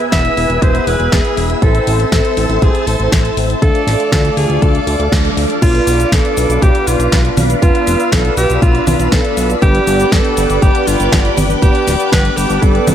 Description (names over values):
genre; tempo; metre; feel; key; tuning
italo disco; 120 BPM; 4/4; straight; unclear; A4 = 435 Hz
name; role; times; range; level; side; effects
string machine, full ensemble; sustained chords; 0.0-12.9 s; A4 to E6; -20 LUFS; right 1 dB; phaser, ensemble chorus
mellow synth brass; stabs; 0.0-12.9 s; A3 to C5; -19 LUFS; left 1 dB; chorus
house drum kit; drums; 0.0-12.9 s; cabasa, congas, crash cymbal, hi-hat, snare drum; -20 LUFS; equal; none
bright alto saxophone; melody; 0.1-12.9 s; F4 to E5; -18 LUFS; equal; ping-pong delay
fat analog bass; bass; 0.1-12.9 s; D1 to D2; -17 LUFS; equal; none
electronic kick drum; drums; 0.1-12.7 s; none; -13 LUFS; equal; none
room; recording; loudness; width
light reverb; none; -10 LUFS; side -10 dB against mid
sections
0.0-5.6 A section; 5.6-12.9 B section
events
band accent 5.1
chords
0.0 E; 1.6 Am; 3.6 Dm; 5.6 Bdim; 9.6 G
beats
0.12 0.62 1.12 | 1.62 2.12 2.62 3.12 | 3.62 4.12 4.62 5.12 | 5.62 6.12 6.62 7.12 | 7.62 8.12 8.62 9.12 | 9.62 10.12 10.62 11.12 | 11.62 12.12 12.62